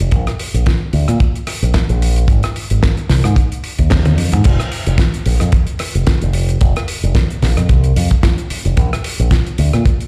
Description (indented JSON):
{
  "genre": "nu-disco, nu disco",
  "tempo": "111 BPM",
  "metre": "4/4",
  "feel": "swing 56% on 16ths",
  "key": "F dorian",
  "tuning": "A4 = 440 Hz",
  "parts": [
    { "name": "fingered electric bass with an envelope filter", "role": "bass", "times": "0.0-9.8 s", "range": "F1 to Bb2", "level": "-16 LUFS", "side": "equal", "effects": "sidechain pumping" },
    { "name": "damped 70s drum kit", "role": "drums", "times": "0.1-10.1 s", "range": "crash cymbal, hi-hat, rim click, snare drum, toms", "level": "-24 LUFS", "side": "equal", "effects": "none" },
    { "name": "kick drum", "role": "drums", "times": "0.1-10.0 s", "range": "none", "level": "-15 LUFS", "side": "equal", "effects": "none" }
  ],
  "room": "light reverb",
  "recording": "played on a big sound system in a bare room, large studio reverb",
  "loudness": "-15 LUFS",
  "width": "mono",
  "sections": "0.0-4.4 A section; 4.4-10.1 B section",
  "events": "drum fill 3.9-4.4; band accent 3.9; drop 4.4-10.1",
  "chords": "none"
}